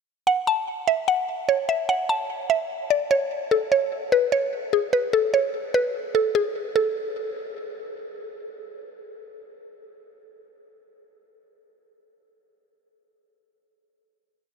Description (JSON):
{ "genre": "hip hop, trap", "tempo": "148 BPM", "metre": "4/4", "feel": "half-time", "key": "unclear", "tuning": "A4 = 437 Hz", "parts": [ { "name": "mallet-like synth pluck", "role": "solo", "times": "0.3-7.9 s", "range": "G#4 to A5", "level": "-22 LUFS", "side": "equal", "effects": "chorus, tape echo" } ], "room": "moderate huge ambient reverb, RT60 8.2 s", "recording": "none", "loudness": "-21 LUFS", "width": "side -5 dB against mid", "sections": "0.3-6.8 breakdown; 6.8-10.0 final note", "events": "none", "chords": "none" }